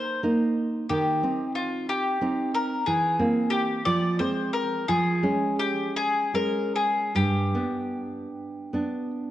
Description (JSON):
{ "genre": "romantic duo for mandolin and classical guitar", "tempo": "49-62 BPM (dotted quarters)", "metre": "6/8", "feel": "rubato", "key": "C minor", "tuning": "A4 = 441 Hz", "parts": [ { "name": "bowl-back mandolin", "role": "melody", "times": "0.0-9.1 s", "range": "F4 to D5", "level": "-26 LUFS", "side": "left 2 dB", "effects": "none" }, { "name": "nylon-string guitar", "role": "accompaniment", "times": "0.0-9.3 s", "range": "G2 to Eb4", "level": "-26 LUFS", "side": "right 2 dB", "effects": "none" } ], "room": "moderate concert hall reverb, RT60 2.3 s", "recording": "worn, warbling old tape, cassette tape, warbly pitch drift", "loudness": "-23 LUFS", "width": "side -13 dB against mid", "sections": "0.0-9.3 A section", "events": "none", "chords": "0.0 Eb5; 0.9 Cm/Eb; 2.9 C7/E; 3.9 Fm; 4.9 Db/F; 7.1 G" }